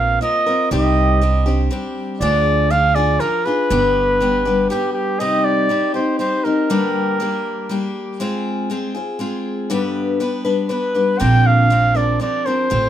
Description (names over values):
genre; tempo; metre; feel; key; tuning
acoustic folk duo or small band; 120 BPM; 3/4; straight; C minor; A4 = 440 Hz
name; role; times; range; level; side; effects
warm flugelhorn; melody; 0.0-7.9, 10.7-12.9 s; G4 to G5; -18 LUFS; right 1 dB; none
picked steel-string acoustic guitar; accompaniment; 0.0-12.9 s; G2 to B4; -20 LUFS; left 2 dB; none
upright bass; bass; 0.0-4.7, 11.2-12.9 s; G1 to D2; -18 LUFS; right 2 dB; none
room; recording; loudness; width
moderate small room reverb, RT60 0.5 s; minimal, uncompressed stereo recording; -15 LUFS; side -10 dB against mid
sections
0.0-5.2 A section; 5.2-12.9 B section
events
none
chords
0.0 Bbsus2; 0.7 Cmadd9; 2.2 Ddim; 3.7 G; 5.2 Cm; 6.7 Gm; 8.2 Fm/Ab; 9.7 G; 11.2 Bbadd9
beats
0.22 | 0.71 1.21 1.71 | 2.21 2.71 3.21 | 3.70 4.20 4.70 | 5.20 5.70 6.20 | 6.70 7.20 7.70 | 8.20 8.70 9.20 | 9.71 10.21 10.71 | 11.21 11.71 12.21 | 12.71